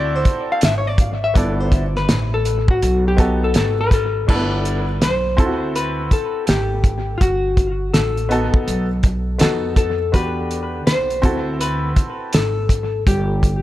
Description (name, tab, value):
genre	hip hop, jazz-hop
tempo	82 BPM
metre	4/4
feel	swing 63% on 16ths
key	G major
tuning	A4 = 440 Hz
part	hollow-body jazz guitar	melody	0.0-13.6 s	F4 to F5	-22 LUFS	left 3 dB	analog delay
part	clear upright piano	accompaniment	0.0-12.4 s	A3 to A4	-24 LUFS	right 1 dB	none
part	upright bass	bass	0.0-13.6 s	G1 to F2	-22 LUFS	equal	none
part	cloth-damped thuddy drum kit	drums	0.3-13.6 s	crash cymbal, hi-hat, kick drum, snare drum	-18 LUFS	equal	none
room	light reverb, studio reverb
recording	echo-heavy mix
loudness	-16 LUFS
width	side -14 dB against mid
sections	0.0-4.3 A section; 4.3-13.6 B section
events	hollow-body jazz guitar solo 0.0-4.3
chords	0.0 D9; 1.4 G69; 2.8 B7; 4.3 G69; 5.4 D9; 7.2 Gadd9; 8.7 B7; 10.1 Em7; 11.2 D9; 13.1 N.C.